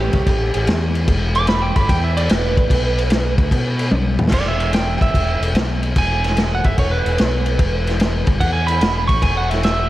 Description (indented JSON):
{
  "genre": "blues rock power trio and southern rock",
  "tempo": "147 BPM",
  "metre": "4/4",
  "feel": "swing 68% on 8ths",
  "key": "unclear",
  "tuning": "A4 = 440 Hz",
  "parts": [
    { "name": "lightly driven lead guitar", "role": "second line", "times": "0.0-9.9 s", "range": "G4 to D6", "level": "-22 LUFS", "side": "right 3 dB", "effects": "tape echo, slapback echo" },
    { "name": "fuzz fingered electric bass", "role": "bass", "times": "0.0-9.9 s", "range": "E1 to B2", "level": "-20 LUFS", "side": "equal", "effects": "overdrive" },
    { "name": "vintage drum kit", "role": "drums", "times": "0.1-9.8 s", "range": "crash cymbal, kick drum, snare drum, toms", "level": "-18 LUFS", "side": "left 1 dB", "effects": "none" }
  ],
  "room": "moderate lush hall reverb, RT60 2.2 s",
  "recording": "big arena sound",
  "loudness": "-15 LUFS",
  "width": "side -15 dB against mid",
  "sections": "0.0-4.3 A section; 4.3-9.9 A section",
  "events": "lead electric guitar solo 0.0-9.9; drum fill 3.9-4.3",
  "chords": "0.0 Am7; 0.7 N.C.; 1.1 E5; 2.7 N.C.; 4.3 Em; 5.6 N.C.; 6.0 E; 7.2 N.C.; 7.6 E5"
}